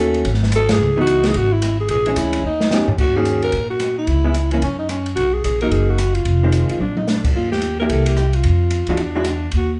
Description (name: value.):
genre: jazz, small-group swing and bop.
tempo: 220 BPM.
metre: 4/4.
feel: swing 61% on 8ths.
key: unclear.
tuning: A4 = 440 Hz.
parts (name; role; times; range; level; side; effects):
growling alto saxophone; melody; 0.0-9.7 s; Db4 to Bb4; -23 LUFS; equal; none.
vintage hollow-body jazz guitar; accompaniment; 0.0-9.3 s; D#3 to G4; -24 LUFS; equal; none.
upright bass; bass; 0.0-9.8 s; F1 to Bb2; -22 LUFS; equal; none.
open jazz drum kit; drums; 0.1-9.6 s; crash cymbal, hi-hat, kick drum, ride cymbal, rim click, snare drum, toms; -26 LUFS; equal; none.
room: moderate large studio reverb, RT60 0.8 s.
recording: band playing live in one room, nothing above 10.3 kHz.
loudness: -18 LUFS.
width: mono.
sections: 0.0-3.0 A section; 3.0-9.8 B section.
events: band accent 0.7; drum fill 2.4-3.0, 6.8.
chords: 0.3 N.C.; 0.8 C#m9; 1.9 A#m7b5; 2.4 D#7b13; 3.0 Ebm7; 4.1 Dbm7; 4.6 Gb5; 5.2 Bmaj7; 6.3 Fm7; 6.8 Bb; 7.4 Eb; 7.9 C7; 8.4 Ebmadd9; 9.0 E9.